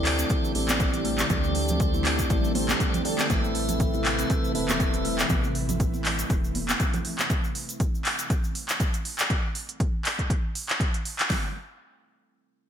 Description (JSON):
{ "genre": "afro house", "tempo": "120 BPM", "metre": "4/4", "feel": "swing 55% on 16ths", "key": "A minor", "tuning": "A4 = 441 Hz", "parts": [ { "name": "ethereal airy pad", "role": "sustained chords", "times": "0.0-7.3 s", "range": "C3 to B4", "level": "-33 LUFS", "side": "left 1 dB", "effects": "ensemble chorus, built-in reverb, sidechain pumping" }, { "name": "kalimba", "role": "arpeggios", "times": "0.0-5.2 s", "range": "G3 to A4", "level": "-33 LUFS", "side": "right 1 dB", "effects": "sidechain pumping, ping-pong delay" }, { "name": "tonewheel organ", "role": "stabs", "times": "0.0-5.3 s", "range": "C4 to E5", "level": "-31 LUFS", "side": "equal", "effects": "slow rotary speaker, sidechain pumping, ping-pong delay" }, { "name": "warm sub bass", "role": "bass", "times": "0.0-6.7 s", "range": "E1 to D2", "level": "-31 LUFS", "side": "equal", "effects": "sidechain pumping" }, { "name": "afro-pop drum kit", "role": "drums", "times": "0.1-11.3 s", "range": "handclaps, hi-hat", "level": "-28 LUFS", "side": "equal", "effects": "gated reverb" }, { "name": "tube shaker", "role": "percussion", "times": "0.2-9.3 s", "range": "none", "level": "-39 LUFS", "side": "left 1 dB", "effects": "none" }, { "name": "deep house drum kit", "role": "drums", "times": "0.3-11.4 s", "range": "hi-hat, kick drum, snare drum", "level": "-26 LUFS", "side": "equal", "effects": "overdrive" }, { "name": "congas", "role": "percussion", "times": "0.3-7.3 s", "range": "none", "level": "-34 LUFS", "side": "right 2 dB", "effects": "none" } ], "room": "light reverb", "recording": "bright 1980s-style digital production", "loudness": "-23 LUFS", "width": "side -9 dB against mid", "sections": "0.0-11.3 A section; 11.3-12.7 B section", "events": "drop 0.0-11.3", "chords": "0.0 D7sus4; 3.3 Amadd9; 7.3 N.C." }